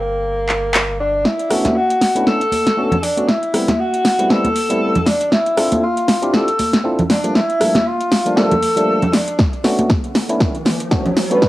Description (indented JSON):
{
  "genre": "deep house",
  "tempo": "118 BPM",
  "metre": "4/4",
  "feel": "swing 56% on 16ths",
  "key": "unclear",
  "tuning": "A4 = 441 Hz",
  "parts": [
    { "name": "mellow tenor saxophone", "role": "melody", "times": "0.0-9.4 s", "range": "Bb3 to A4", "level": "-18 LUFS", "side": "equal", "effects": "cassette tape, analog delay" },
    { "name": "warm sub bass", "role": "bass", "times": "0.0-1.2 s", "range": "G1", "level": "-27 LUFS", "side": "equal", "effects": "sidechain pumping" },
    { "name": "deep house drum kit", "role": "drums", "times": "0.5-11.5 s", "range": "handclaps, hi-hat, rim click, snare drum", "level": "-18 LUFS", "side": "equal", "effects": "overdrive, cassette tape" },
    { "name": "tine electric piano", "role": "stabs", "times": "1.5-11.4 s", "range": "F3 to A4", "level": "-20 LUFS", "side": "equal", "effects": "vintage 12-bit sampler grit, sidechain pumping, cassette tape" },
    { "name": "congas", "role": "percussion", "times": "1.7-11.1 s", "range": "none", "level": "-22 LUFS", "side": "right 1 dB", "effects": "none" },
    { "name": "electronic kick drum", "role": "drums", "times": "9.4-11.5 s", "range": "none", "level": "-18 LUFS", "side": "equal", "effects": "overdrive, cassette tape" },
    { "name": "riser", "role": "sound effects", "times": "10.0-11.5 s", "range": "none", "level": "-25 LUFS", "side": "equal", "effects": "none" },
    { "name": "breathy flute-like synth lead", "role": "melody", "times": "11.3-11.5 s", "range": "B4", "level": "-14 LUFS", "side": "right 2 dB", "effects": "wide subtle chorus, cassette tape" }
  ],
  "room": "wet studio reverb, RT60 0.6 s",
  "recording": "home recording on cassette, high-pass filter",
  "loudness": "-14 LUFS",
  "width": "side -16 dB against mid",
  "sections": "0.0-1.3 A section; 1.3-11.5 B section",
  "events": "filter sweep 0.0-1.3; build-up 1.3-11.5; drum fill 1.3-11.5; riser 10.0-11.5",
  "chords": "0.0 Gm; 1.3 Bm9; 3.3 Am9; 5.1 Dm9; 7.1 Gm9; 9.4 Bm9",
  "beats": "0.23 0.74 | 1.25 1.76 2.27 2.78 | 3.29 3.79 4.30 4.81 | 5.32 5.83 6.34 6.84 | 7.35 7.86 8.37 8.88 | 9.39 9.90 10.40 10.91 | 11.42"
}